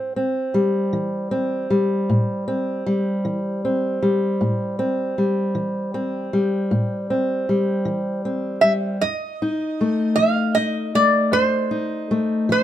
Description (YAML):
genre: acoustic country blues, solo or duo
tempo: 52 BPM (dotted quarters)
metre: 12/8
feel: straight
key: A minor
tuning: A4 = 441 Hz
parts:
  - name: fingerpicked steel-string acoustic guitar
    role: accompaniment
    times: 0.0-12.6 s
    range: F2 to Eb4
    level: -20 LUFS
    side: left 1 dB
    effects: none
  - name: lap resonator guitar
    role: melody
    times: 8.6-12.6 s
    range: C5 to F5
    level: -19 LUFS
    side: right 2 dB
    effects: plate reverb
room: light reverb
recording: dark, warm production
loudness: -19 LUFS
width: side -11 dB against mid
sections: 0.0-12.6 A section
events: none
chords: 0.0 Am7; 9.0 F7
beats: 0.93 2.08 3.24 | 4.39 5.55 6.70 7.86 | 9.01 10.17 11.32 12.48